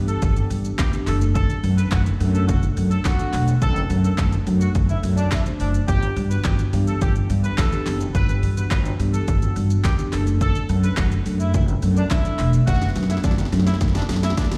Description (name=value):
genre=dance-pop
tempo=106 BPM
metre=4/4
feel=straight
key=unclear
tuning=A4 = 440 Hz
part: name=mellow tine electric piano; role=accompaniment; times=0.0-14.6 s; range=E3 to C5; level=-31 LUFS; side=equal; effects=phaser, sidechain pumping, slapback echo
part: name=upright bass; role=bass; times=0.0-14.6 s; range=E1 to G2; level=-23 LUFS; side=equal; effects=sidechain pumping
part: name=clear horn section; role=melody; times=0.1-14.5 s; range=D4 to B4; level=-33 LUFS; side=equal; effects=sidechain pumping, slapback echo, digital delay
part: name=punchy analog drum machine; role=drums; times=0.1-14.6 s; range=handclaps, hi-hat, kick drum, shaker, snare drum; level=-26 LUFS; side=equal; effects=overdrive
room=little or no reverb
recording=live gig heard through the venue's PA, recital hall reverb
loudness=-20 LUFS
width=mono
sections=0.0-14.6 A section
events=drum fill 12.7-14.6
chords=0.0 G6; 1.1 D; 5.9 G6; 10.1 D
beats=0.22 0.79 | 1.35 1.92 2.49 3.05 | 3.62 4.18 4.75 5.32 | 5.88 6.45 7.01 7.58 | 8.15 8.71 9.28 9.84 | 10.41 10.98 11.54 12.11 | 12.68 13.24 13.81 14.37